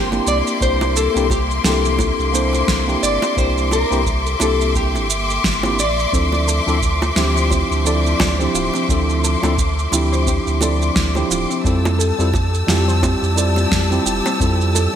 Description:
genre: sunset chillout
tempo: 87 BPM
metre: 4/4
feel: swing 58% on 16ths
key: D minor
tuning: A4 = 440 Hz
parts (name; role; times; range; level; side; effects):
- nylon-string guitar; melody; 0.0-6.1 s; G4 to D5; -22 LUFS; left 2 dB; digital delay
- tine electric piano; accompaniment; 0.0-15.0 s; F3 to D5; -22 LUFS; right 1 dB; auto-pan, digital delay
- warm symphonic string section; sustained chords; 0.0-15.0 s; F3 to E6; -22 LUFS; left 2 dB; none
- warm sub bass; bass; 0.0-14.9 s; D1 to F2; -20 LUFS; equal; none
- electronic shaker and snare drum; drums; 0.1-14.9 s; none; -23 LUFS; right 2 dB; gated reverb
- bongos; percussion; 0.1-14.9 s; none; -28 LUFS; right 2 dB; none
- electronic kick drum; drums; 0.6-14.6 s; none; -23 LUFS; equal; none
- soft round pluck; arpeggios; 6.1-14.9 s; C4 to C5; -27 LUFS; equal; lush chorus, digital delay
room: moderate lush hall reverb, RT60 2.4 s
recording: bright 1980s-style digital production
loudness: -15 LUFS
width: side -9 dB against mid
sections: 0.0-15.0 A section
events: none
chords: 0.3 C9; 6.1 Dm9; 11.6 Fmaj9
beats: | 0.61 1.30 1.99 2.68 | 3.37 4.06 4.75 5.44 | 6.13 6.82 7.51 8.20 | 8.89 9.58 10.27 10.96 | 11.65 12.34 13.03 13.72 | 14.41

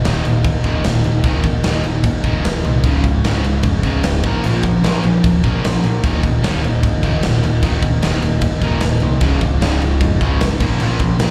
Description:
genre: punk rock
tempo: 151 BPM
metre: 4/4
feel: straight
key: unclear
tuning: A4 = 439 Hz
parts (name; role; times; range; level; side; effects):
- biting overdriven guitar; riff; 0.0-11.3 s; Db2 to Bb3; -24 LUFS; equal; none
- cranked stack guitar; riff; 0.0-11.3 s; Db2 to Bb3; -24 LUFS; equal; overdrive
- crunchy overdriven guitar; riff; 0.0-11.3 s; Db2 to Bb4; -27 LUFS; equal; none
- big rock drum kit; drums; 0.0-11.3 s; crash cymbal, kick drum, snare drum; -21 LUFS; equal; none
- growling picked electric bass; bass; 0.1-11.3 s; Db1 to C2; -22 LUFS; equal; overdrive
room: little or no reverb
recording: live gig heard through the venue's PA, club reverb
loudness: -16 LUFS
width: mono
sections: 0.0-11.3 A section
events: none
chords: 0.0 Eb; 2.9 Db; 4.2 Bbm; 6.0 Eb; 9.2 Db; 10.6 Bbm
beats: 0.06 0.46 0.86 | 1.26 1.66 2.06 2.45 | 2.85 3.25 3.65 4.05 | 4.45 4.84 5.24 5.64 | 6.04 6.44 6.84 7.23 | 7.63 8.03 8.43 8.83 | 9.22 9.62 10.02 10.42 | 10.82 11.22

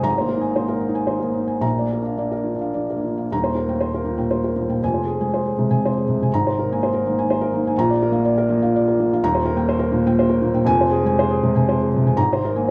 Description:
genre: neoclassical minimalist piano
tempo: 106-126 BPM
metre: 3/4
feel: rubato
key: Eb major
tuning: A4 = 440 Hz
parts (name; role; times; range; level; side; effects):
- felt-muted upright piano; solo; 0.0-12.7 s; Eb1 to Bb5; -20 LUFS; equal; none
room: moderate lush hall reverb, RT60 2.5 s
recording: rough home demo mix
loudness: -20 LUFS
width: mono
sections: 0.0-3.3 A section; 3.3-12.7 B section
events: none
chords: 0.1 Abadd9; 1.6 Bb; 3.3 Eb6; 4.8 Fm; 6.3 Abadd9; 7.7 Bb; 9.2 Eb6; 10.7 Fm; 12.2 Abadd9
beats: | 0.07 0.57 1.09 | 1.64 2.20 2.77 | 3.32 3.83 4.33 | 4.83 5.32 5.81 | 6.30 6.78 7.26 | 7.74 8.23 8.72 | 9.21 9.69 10.17 | 10.66 11.16 11.67 | 12.18 12.69

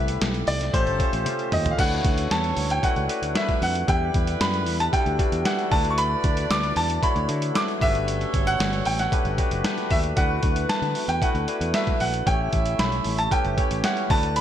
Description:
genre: polished 1980s jazz-funk pop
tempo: 114 BPM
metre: 4/4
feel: straight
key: D major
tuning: A4 = 441 Hz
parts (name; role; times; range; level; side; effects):
- bright grand piano; melody; 0.0-14.4 s; B#4 to D6; -26 LUFS; right 1 dB; none
- mellow horn section; second line; 0.0-14.4 s; A3 to E5; -34 LUFS; right 2 dB; none
- barky tine electric piano; accompaniment; 0.0-14.4 s; G3 to C#5; -28 LUFS; left 2 dB; wide subtle chorus
- fingered electric bass; bass; 0.0-14.4 s; F#1 to D3; -27 LUFS; equal; none
- boom bap sampler-style drum kit; drums; 0.1-14.4 s; crash cymbal, hi-hat, kick drum, snare drum, toms; -25 LUFS; equal; gated reverb
room: light reverb, digital ambience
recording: bright 1980s-style digital production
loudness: -21 LUFS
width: side -10 dB against mid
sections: 0.0-1.8 A section; 1.8-14.4 A section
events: drum fill 1.3-1.8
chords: 0.0 C6; 0.7 A7alt; 1.8 D69; 3.9 Em11; 5.7 D69; 7.8 Gmaj9; 10.2 D69; 12.3 A7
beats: 0.22 0.74 1.26 | 1.79 2.31 2.84 3.36 | 3.88 4.41 4.93 5.46 | 5.98 6.50 7.03 7.55 | 8.07 8.60 9.12 9.64 | 10.17 10.69 11.22 11.74 | 12.27 12.79 13.31 13.84 | 14.36

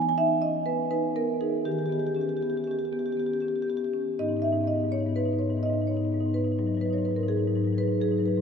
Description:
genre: classical, contemporary piece for solo marimba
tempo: 118-126 BPM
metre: 5/4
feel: rubato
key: G# minor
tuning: A4 = 441 Hz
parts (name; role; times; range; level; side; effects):
- marimba with soft mallets; solo; 0.0-8.4 s; G#2 to G#5; -24 LUFS; equal; none
room: wet cathedral reverb, RT60 6.3 s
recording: in a vast, echoing space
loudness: -25 LUFS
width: side -6 dB against mid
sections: 0.0-4.2 A section; 4.2-8.4 B section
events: none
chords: 0.0 Emaj7; 1.7 D#aug7; 4.2 G#m; 6.6 G#m7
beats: 0.18 0.66 1.16 | 1.66 2.16 2.67 3.17 3.67 | 4.17 4.66 5.15 5.63 6.12 | 6.59 7.07 7.55 8.03

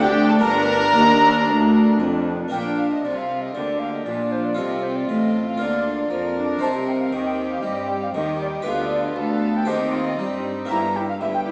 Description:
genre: classical, baroque-style concerto movement with solo episodes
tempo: 117 BPM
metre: 4/4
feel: straight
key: Bb major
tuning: A4 = 441 Hz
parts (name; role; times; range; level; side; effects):
- rich chamber violin section; melody; 0.0-11.5 s; C5 to Bb5; -35 LUFS; equal; none
- wooden flute; melody; 0.0-11.4 s; C5 to Bb5; -27 LUFS; equal; none
- rich chamber violin section; second line; 0.0-11.5 s; D4 to Bb4; -30 LUFS; equal; none
- dark chamber viola section; accompaniment; 0.0-11.5 s; G3 to E4; -29 LUFS; equal; none
- harpsichord; accompaniment; 0.0-11.5 s; D2 to E5; -30 LUFS; equal; none
- rich chamber cello section; bass; 0.0-11.5 s; D2 to G3; -26 LUFS; equal; none
- rich studio double bass section; bass; 0.0-11.5 s; F1 to G2; -33 LUFS; equal; none
room: wet stone room reverb, RT60 1.4 s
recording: small speaker sound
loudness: -21 LUFS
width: mono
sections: 0.0-2.5 A section; 2.5-11.5 B section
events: none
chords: 0.4 Gm; 2.5 Bb; 4.6 F/C; 5.6 Bb/D; 6.6 Cm; 8.7 G7/D; 9.7 Cm/Eb; 10.7 Edim/G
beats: | 0.43 0.95 1.48 2.00 | 2.52 3.04 3.55 4.06 | 4.57 5.09 5.60 6.11 | 6.62 7.13 7.64 8.15 | 8.66 9.18 9.68 10.19 | 10.70 11.21

